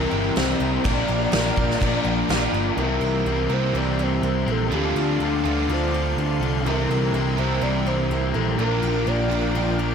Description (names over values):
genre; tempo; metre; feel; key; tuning
rock, shoegaze and dream pop; 124 BPM; 4/4; straight; C mixolydian; A4 = 439 Hz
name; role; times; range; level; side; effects
hollow clarinet-like synth lead; melody; 0.0-9.9 s; F4 to D5; -29 LUFS; equal; chorus, analog delay
lush unison pad; sustained chords; 0.0-9.9 s; A4 to D6; -33 LUFS; right 1 dB; chorus
picked twelve-string acoustic guitar; arpeggios; 0.0-9.9 s; E3 to G4; -35 LUFS; right 4 dB; wide subtle chorus, analog delay
overdriven electric guitar; riff; 0.0-9.9 s; Bb2 to Bb4; -25 LUFS; left 10 dB; lush chorus
overdriven semi-hollow guitar; riff; 0.0-9.9 s; Bb2 to Bb4; -27 LUFS; right 12 dB; reverse reverb
picked electric bass; bass; 0.0-9.9 s; G1 to Bb2; -25 LUFS; equal; none
loose indie drum kit; drums; 0.4-2.4 s; crash cymbal, kick drum, snare drum; -26 LUFS; equal; none
room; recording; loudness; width
light reverb, small room ambience; none; -20 LUFS; side -7 dB against mid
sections
0.0-2.8 A section; 2.8-9.9 B section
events
none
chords
0.0 C7; 0.8 Bb6; 2.8 C7; 4.7 Dm7; 6.7 C7; 8.6 Bb6